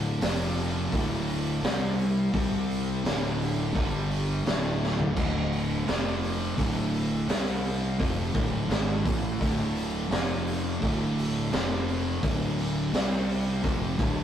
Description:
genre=stoner and doom metal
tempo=85 BPM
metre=4/4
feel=straight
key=D minor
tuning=A4 = 441 Hz
part: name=biting overdriven guitar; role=riff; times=0.0-14.2 s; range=D2 to C4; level=-34 LUFS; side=equal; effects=none
part: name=thick fuzz guitar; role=riff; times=0.0-14.2 s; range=D2 to C4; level=-32 LUFS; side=left 4 dB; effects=distortion
part: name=thick fuzz guitar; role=riff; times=0.0-14.2 s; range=D2 to C4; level=-33 LUFS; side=right 4 dB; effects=distortion
part: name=fuzz fingered electric bass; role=bass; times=0.0-14.2 s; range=D1 to C2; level=-32 LUFS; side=equal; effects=overdrive, tube saturation
part: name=raw garage drum kit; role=drums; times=0.2-14.2 s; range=crash cymbal, hi-hat, kick drum, snare drum, toms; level=-30 LUFS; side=equal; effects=none
room=light reverb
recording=rough rehearsal-room recording, tube saturation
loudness=-25 LUFS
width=side -10 dB against mid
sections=0.0-14.2 A section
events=drum fill 4.8-5.2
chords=0.2 F5; 0.9 D5; 1.6 C5; 3.0 D5; 3.8 G5; 4.5 D5; 5.9 F5; 6.6 D5; 7.3 C5; 8.0 Dm; 10.1 F5; 10.8 D5; 11.5 F5; 12.2 D5; 12.9 C5; 13.6 Dm

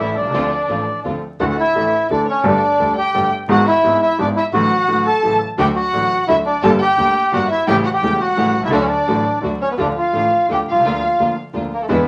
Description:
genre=tango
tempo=172 BPM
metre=3/4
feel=rubato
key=D major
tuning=A4 = 437 Hz
part: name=bandoneon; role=melody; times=0.0-12.1 s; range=A3 to E5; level=-19 LUFS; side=equal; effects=none
part: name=warm studio violin section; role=second line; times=0.0-12.1 s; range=D4 to A5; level=-25 LUFS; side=equal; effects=none
part: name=clear grand piano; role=accompaniment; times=0.0-12.0 s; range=E1 to A4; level=-23 LUFS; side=equal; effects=none
part: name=bright chamber string section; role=stabs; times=0.0-1.2, 5.6-12.0 s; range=G#3 to G4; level=-28 LUFS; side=equal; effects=none
part: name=rich double bass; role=bass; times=0.0-12.0 s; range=E1 to E2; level=-29 LUFS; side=equal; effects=none
room=wet studio ambience, RT60 0.5 s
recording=vinyl crackle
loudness=-17 LUFS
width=mono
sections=0.0-1.4 A section; 1.4-9.8 B section; 9.8-12.1 A section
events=none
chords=0.3 Dm7; 1.4 Dsus2; 2.4 Gsus2; 3.5 E/G#; 4.5 D/A; 5.2 A6; 5.6 D; 6.6 Gm; 7.7 A7; 8.7 D; 9.8 Dm; 10.8 Bb/D

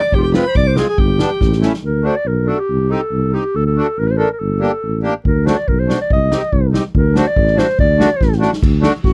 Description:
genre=klezmer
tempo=141 BPM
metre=2/4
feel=straight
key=D phrygian dominant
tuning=A4 = 440 Hz
part: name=mellow clarinet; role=melody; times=0.0-9.1 s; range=F4 to Eb5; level=-21 LUFS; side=equal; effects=none
part: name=clear violin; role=second line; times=0.0-1.6, 9.0-9.1 s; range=F#5 to D6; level=-30 LUFS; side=equal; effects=none
part: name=dark tuba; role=bass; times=0.1-9.1 s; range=F1 to D2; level=-19 LUFS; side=equal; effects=none
part: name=swinging big-band drum kit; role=drums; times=0.1-1.8, 5.3-9.1 s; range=crash cymbal, kick drum, snare drum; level=-20 LUFS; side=equal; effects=none
part: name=accordion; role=accompaniment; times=0.3-8.9 s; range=G3 to A4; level=-20 LUFS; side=equal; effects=none
room=little or no reverb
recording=dry, close 1970s-style studio recording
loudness=-15 LUFS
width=mono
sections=0.0-1.8 A section; 1.8-8.6 B section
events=speeding up 0.0-9.1; drum fill 1.4-1.8, 8.2-8.6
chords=0.1 Fm; 1.0 G; 1.4 A7; 1.8 D; 2.7 Cm; 3.5 D5; 4.4 Gm; 5.2 D; 6.1 Cm; 6.9 D

